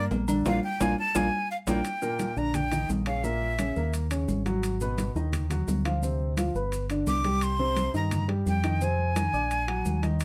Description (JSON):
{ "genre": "Afro-Cuban jazz", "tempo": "172 BPM", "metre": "4/4", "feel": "straight", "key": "Eb major", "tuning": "A4 = 440 Hz", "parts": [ { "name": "breathy bright jazz flute", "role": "melody", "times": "0.0-3.9, 7.1-10.0 s", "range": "Fb5 to D6", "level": "-32 LUFS", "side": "equal", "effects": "none" }, { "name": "dark grand piano", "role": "accompaniment", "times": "0.0-10.2 s", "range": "Bb2 to D6", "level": "-33 LUFS", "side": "equal", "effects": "none" }, { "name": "deep dub fingered electric bass", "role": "bass", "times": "0.0-10.2 s", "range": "G1 to G2", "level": "-32 LUFS", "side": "equal", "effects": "none" }, { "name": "congas", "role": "percussion", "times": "0.1-10.2 s", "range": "none", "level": "-35 LUFS", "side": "equal", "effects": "none" }, { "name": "maracas", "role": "percussion", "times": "0.1-10.2 s", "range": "none", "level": "-45 LUFS", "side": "equal", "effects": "none" }, { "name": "timbales and agogo bells", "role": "percussion", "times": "0.1-10.2 s", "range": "none", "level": "-40 LUFS", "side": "equal", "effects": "none" } ], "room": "light reverb", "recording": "none", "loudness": "-28 LUFS", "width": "mono", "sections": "0.0-1.8 A section; 1.8-10.2 B section", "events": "flute solo 0.0-1.8; band accent 0.5-1.8; drum fill 1.3-1.8", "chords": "0.5 Bb7; 1.8 Ebmaj7; 3.2 Bbdim; 3.9 Eb5; 4.6 Abm7; 6.0 Gadd11; 6.7 G; 7.4 Cm7; 8.8 Fm7; 9.5 Bbaug7" }